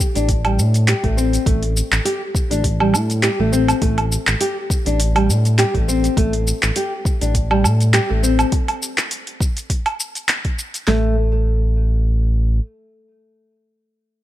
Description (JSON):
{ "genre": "organic downtempo", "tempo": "102 BPM", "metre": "4/4", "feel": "swing 55% on 16ths", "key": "A minor", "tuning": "A4 = 440 Hz", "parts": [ { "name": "deep house drum kit", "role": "drums", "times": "0.0-11.0 s", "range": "handclaps, kick drum, snare drum", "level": "-20 LUFS", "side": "equal", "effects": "none" }, { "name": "deep house drum kit", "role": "drums", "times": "0.0-10.9 s", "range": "handclaps, hi-hat, shaker, woodblock", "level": "-21 LUFS", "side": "right 1 dB", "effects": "none" }, { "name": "nylon-string guitar", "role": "arpeggios", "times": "0.2-11.2 s", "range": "G3 to G4", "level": "-21 LUFS", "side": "left 1 dB", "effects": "digital delay" }, { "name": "smooth synth bass", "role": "bass", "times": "0.2-12.6 s", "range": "A1 to A2", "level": "-17 LUFS", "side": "equal", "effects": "none" } ], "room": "little or no reverb", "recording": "none", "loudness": "-16 LUFS", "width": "side -14 dB against mid", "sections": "0.0-10.9 A section; 10.9-13.2 B section", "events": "none", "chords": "none" }